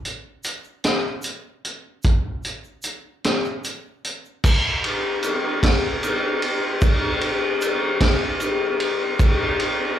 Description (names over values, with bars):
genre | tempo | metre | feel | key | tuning
rock | 50 BPM (dotted quarters) | 6/8 | straight | none | none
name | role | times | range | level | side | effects
vintage drum kit | drums | 0.0-9.8 s | crash cymbal, hi-hat, kick drum, ride cymbal, snare drum | -19 LUFS | equal | none
tube shaker | percussion | 0.4-9.4 s | none | -40 LUFS | right 3 dB | slapback echo
room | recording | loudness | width
light reverb | live gig heard through the venue's PA, club reverb | -20 LUFS | side -10 dB against mid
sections
0.0-4.4 A section; 4.4-10.0 B section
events
none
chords
none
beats
0.84 | 2.04 3.24 | 4.43 5.62 | 6.81 8.01 | 9.19